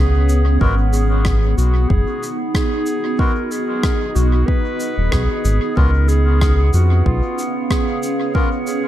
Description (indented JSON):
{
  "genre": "ambient dub",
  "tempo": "93 BPM",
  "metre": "4/4",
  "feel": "swing 54% on 16ths",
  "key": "Db mixolydian",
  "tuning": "A4 = 441 Hz",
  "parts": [
    { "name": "clear clarinet", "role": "melody", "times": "0.0-8.9 s", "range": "F4 to Cb5", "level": "-24 LUFS", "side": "equal", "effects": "dub echo" },
    { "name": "granular cloud pad", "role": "sustained chords", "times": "0.0-8.9 s", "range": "Cb4 to F5", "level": "-24 LUFS", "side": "equal", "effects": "built-in reverb" },
    { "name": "round analog bass", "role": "bass", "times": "0.0-7.2 s", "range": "Eb1 to F2", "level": "-14 LUFS", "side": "equal", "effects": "none" },
    { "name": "drifting glass-harmonics texture", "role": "texture", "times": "0.0-8.9 s", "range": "Cb4", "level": "-26 LUFS", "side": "right 3 dB", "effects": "chorus, built-in reverb" },
    { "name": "shaker and rim click", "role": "drums", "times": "0.3-8.8 s", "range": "none", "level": "-29 LUFS", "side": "left 1 dB", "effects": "dub echo" },
    { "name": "melodica", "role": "stabs", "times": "0.6-8.5 s", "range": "Ab3 to Gb4", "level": "-31 LUFS", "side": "left 2 dB", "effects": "dub echo" },
    { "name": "electronic kick drum", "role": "drums", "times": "0.6-8.5 s", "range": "none", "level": "-19 LUFS", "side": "equal", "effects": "none" }
  ],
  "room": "small room ambience",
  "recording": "dark, warm production",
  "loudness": "-14 LUFS",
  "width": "side -12 dB against mid",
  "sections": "0.0-8.9 A section",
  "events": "none",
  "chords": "0.0 Db7; 0.6 Abm7; 5.8 Db7"
}